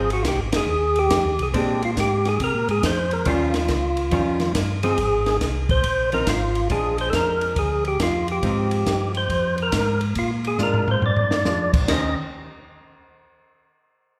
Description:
soul jazz organ trio; 139 BPM; 4/4; swing 66% on 8ths; Eb major; A4 = 439 Hz
percussive tonewheel organ; melody; 0.0-12.2 s; F4 to Eb5; -25 LUFS; equal; slow rotary speaker, overdrive
archtop guitar, miked and amplified; accompaniment; 0.0-12.2 s; Eb3 to C5; -31 LUFS; equal
mellow tonewheel organ; bass; 0.0-12.2 s; F1 to C3; -28 LUFS; equal; slow rotary speaker
compact cocktail drum kit; drums; 0.1-12.0 s; crash cymbal, hi-hat, kick drum, ride cymbal, snare drum, toms; -28 LUFS; equal
wet scoring stage reverb, RT60 1.7 s; recorded in a church or concert hall; -22 LUFS; mono
0.0-5.0 A section; 5.0-11.9 B section; 11.9-13.6 C section
band accent 0.5; drum fill 10.6-11.5
0.0 Fm7; 1.5 Bb9; 3.3 Eb9; 5.0 Ab6; 6.7 Bb7; 8.4 Ab6; 10.2 Bb7; 11.9 Eb6
0.26 0.68 1.11 | 1.54 1.97 2.40 2.83 | 3.26 3.69 4.12 4.55 | 4.98 5.41 5.84 6.27 | 6.70 7.13 7.56 8.00 | 8.43 8.86 9.29 9.72 | 10.16 10.59 11.02 11.46 | 11.89

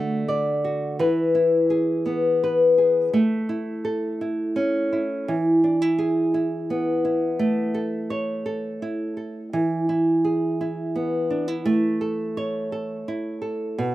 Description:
pop; 56 BPM (dotted quarters); 6/8; straight; A major; A4 = 440 Hz
flamenco guitar; solo; 0.0-13.9 s; B2 to D5; -21 LUFS; equal
little or no reverb; recorded outdoors, with no room sound; -21 LUFS; side -15 dB against mid
0.0-3.1 A section; 3.1-13.9 B section
0.0 D; 1.0 E; 3.1 A; 5.3 E; 7.4 A; 9.5 E; 11.7 A
| 1.01 2.07 | 3.14 4.20 | 5.27 6.33 | 7.40 8.46 | 9.53 10.59 | 11.66 12.72 | 13.79

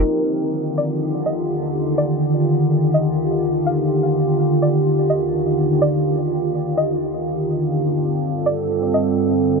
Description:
hip hop; 125 BPM; 4/4; half-time; Eb lydian; A4 = 442 Hz
glassy FM pad; sustained chords; 0.0-9.6 s; Eb2 to A4; -17 LUFS; equal; ensemble chorus, built-in reverb
concert harp; arpeggios; 0.0-2.3 s; Bb3 to Bb4; -30 LUFS; left 3 dB; low-pass filter, ping-pong delay
string-like resonator pluck; melody; 0.8-9.2 s; D5 to F5; -26 LUFS; equal; chorus, low-pass filter, ping-pong delay
light reverb, studio ambience; dark, warm production, low-pass filter; -17 LUFS; side -4 dB against mid
0.1-9.6 A section
0.1 Ebmaj9; 7.7 G7sus4
| 0.06 0.54 1.02 1.50 | 1.98 2.46 2.94 3.42 | 3.90 4.38 4.86 5.34 | 5.82 6.30 6.78 7.26 | 7.74 8.22 8.70 9.18

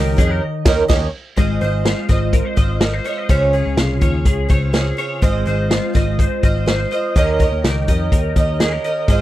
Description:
jangly indie pop; 125 BPM; 4/4; straight; Ab major; A4 = 436 Hz
picked twelve-string acoustic guitar; accompaniment; 0.0-9.2 s; Db3 to Eb5; -22 LUFS; right 5 dB
twelve-string electric guitar; arpeggios; 0.0-9.2 s; Db3 to Eb5; -22 LUFS; left 3 dB; ensemble chorus, slapback echo
vintage muted picked electric bass; bass; 0.0-9.2 s; Ab1 to F2; -20 LUFS; equal
vintage drum kit; drums; 0.2-9.2 s; crash cymbal, hi-hat, kick drum, snare drum; -16 LUFS; equal
little or no reverb; dry, close 1970s-style studio recording; -15 LUFS; side -14 dB against mid
0.0-1.4 A section; 1.4-9.2 B section
band accent 0.4-1.4
0.0 Eb7; 1.4 Ab6; 3.3 Dbmaj7; 5.2 Ab6; 7.2 Eb7
0.42 0.90 | 1.38 1.86 2.34 2.82 | 3.30 3.78 4.26 4.75 | 5.23 5.71 6.19 6.67 | 7.16 7.64 8.12 8.60 | 9.08

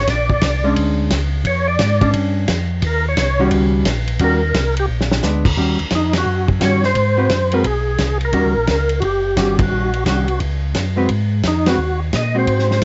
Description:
soul jazz organ trio; 174 BPM; 4/4; swing 64% on 8ths; A4 = 440 Hz
percussive tonewheel organ; melody; 0.0-12.8 s; Eb4 to Eb5; -22 LUFS; equal; overdrive, chorus vibrato, slow rotary speaker
mellow tonewheel organ; bass; 0.0-12.8 s; F#1 to Bb2; -22 LUFS; equal; slow rotary speaker
warm soul drum kit; drums; 0.1-12.8 s; crash cymbal, hi-hat, kick drum, ride cymbal, snare drum; -24 LUFS; equal
archtop guitar, miked and amplified; accompaniment; 0.6-12.8 s; Eb3 to B4; -21 LUFS; equal
light reverb; worn, warbling old tape, cassette tape, warbly pitch drift, nothing above 7.8 kHz; -17 LUFS; mono
0.0-5.6 A section; 5.6-12.8 B section
tonewheel organ solo 0.0-5.6; drum fill 4.9-5.2; band accent 6.1, 9.5, 11.6
0.1 Bb7#9; 2.8 Eb7#9; 4.9 Bb7b9; 5.6 Eb7#9; 7.0 Ab7#9; 8.3 Eb7#9; 11.1 Ab7
| 0.08 0.42 0.77 1.11 | 1.45 1.80 2.14 2.48 | 2.83 3.17 3.51 3.85 | 4.20 4.54 4.88 5.23 | 5.57 5.92 6.26 6.61 | 6.95 7.30 7.64 7.99 | 8.33 8.68 9.02 9.37 | 9.71 10.06 10.40 10.75 | 11.09 11.44 11.78 12.13 | 12.47 12.82

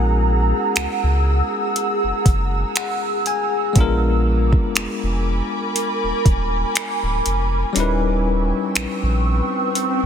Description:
contemporary R&B; 60 BPM; 4/4; swing 54% on 16ths; A4 = 436 Hz
bell-like tine electric piano; accompaniment; 0.0-10.1 s; G3 to G#5; -25 LUFS; left 3 dB; medium stereo tremolo
ethereal airy pad; sustained chords; 0.0-10.1 s; G#4 to E6; -22 LUFS; right 1 dB; ensemble chorus, built-in reverb, phaser, sidechain pumping
warm sub bass; bass; 0.0-10.1 s; D1 to C#2; -20 LUFS; equal
smooth R&B drum kit; drums; 0.8-10.0 s; finger snaps, hi-hat, kick drum; -20 LUFS; equal; soft clipping on snare
swell; sound effects; 9.2-10.1 s; -27 LUFS; equal
light reverb, digital ambience; dense, heavily limited modern master; -17 LUFS; side -8 dB against mid
0.0-10.1 A section
tine electric piano fill 2.3-3.8; swell 9.2-10.1
0.0 F#9/A#; 3.8 A#7b9; 7.8 D#7b9b13
0.76 1.76 2.76 | 3.76 4.76 5.76 6.76 | 7.76 8.76 9.76

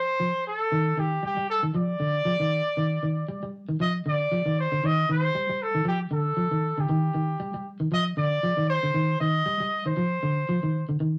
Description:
afrobeat; 117 BPM; 4/4; swing 56% on 16ths; F mixolydian; A4 = 444 Hz
warm trumpet; melody; 0.0-10.9 s; G4 to Eb5; -29 LUFS; equal
electric guitar at the edge of break-up; arpeggios; 0.2-11.2 s; D3 to G3; -28 LUFS; equal
moderate studio reverb, RT60 0.6 s; rough rehearsal-room recording; -26 LUFS; mono
0.0-11.2 A section
0.0 F7sus2
0.20 0.72 1.23 | 1.75 2.26 2.78 3.29 | 3.81 4.32 4.83 5.35 | 5.86 6.38 6.89 7.41 | 7.92 8.44 8.95 9.46 | 9.98 10.49 11.01

